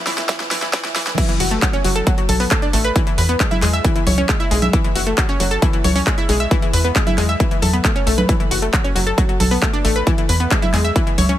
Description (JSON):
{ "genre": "uplifting trance", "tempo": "135 BPM", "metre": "4/4", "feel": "straight", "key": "F# minor", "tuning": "A4 = 443 Hz", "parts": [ { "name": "analog pluck", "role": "arpeggios", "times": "0.1-11.3 s", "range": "E3 to E5", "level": "-20 LUFS", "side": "left 1 dB", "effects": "chorus, sidechain pumping, ping-pong delay" }, { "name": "big-room dance drum kit", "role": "drums", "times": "0.1-11.4 s", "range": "congas, crash cymbal, handclaps, hi-hat, snare drum", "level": "-21 LUFS", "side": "equal", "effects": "overdrive, sidechain pumping on hats, small room ambience, sidechain pumping on perc, sidechain pumping on cymbals" }, { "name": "electronic kick drum", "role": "drums", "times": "0.3-11.0 s", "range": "none", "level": "-18 LUFS", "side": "equal", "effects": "overdrive, small room ambience" }, { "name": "tight sequencer bass", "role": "bass", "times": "1.4-11.4 s", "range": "F#1 to E2", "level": "-20 LUFS", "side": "equal", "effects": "sidechain pumping" } ], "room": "light reverb", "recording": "high-pass filter", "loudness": "-15 LUFS", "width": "side -12 dB against mid", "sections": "0.0-1.2 A section; 1.2-11.4 B section", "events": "build-up 0.0-1.2; drum fill 0.0-1.2; drop 1.2-11.4", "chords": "0.0 N.C.; 1.2 F#m7; 2.1 Bm7; 3.0 E; 3.8 C#m; 4.7 F#m7; 5.6 C#m; 6.5 E; 7.4 Aadd9/E; 8.3 F#m7; 9.2 Bm7; 10.1 E", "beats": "0.29 0.73 | 1.18 1.62 2.07 2.51 | 2.96 3.40 3.85 4.29 | 4.73 5.18 5.62 6.07 | 6.51 6.96 7.40 7.84 | 8.29 8.73 9.18 9.62 | 10.07 10.51 10.96" }